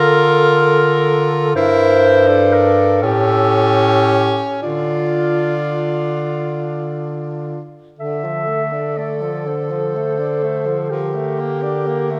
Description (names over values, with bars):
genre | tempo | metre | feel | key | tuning
classical, lyrical piece for single-reed quartet | 34-44 BPM (dotted quarters) | 6/8 | rubato | D minor | A4 = 442 Hz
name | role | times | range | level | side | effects
mellow clarinet | melody | 0.0-12.2 s | F4 to E5 | -21 LUFS | equal | none
mellow alto saxophone | second line | 0.0-12.2 s | F4 to Bb4 | -23 LUFS | equal | none
warm tenor saxophone | accompaniment | 0.0-12.2 s | D3 to F4 | -23 LUFS | equal | none
warm bass clarinet | bass | 0.0-12.2 s | G2 to D3 | -22 LUFS | equal | none
room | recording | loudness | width
wet scoring stage reverb, RT60 1.8 s | none | -16 LUFS | mono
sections
0.0-8.0 A section; 8.0-12.2 B section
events
none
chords
0.0 Dm; 1.6 Edim/G; 3.0 A7; 4.6 Dm; 10.9 Bbmaj7/D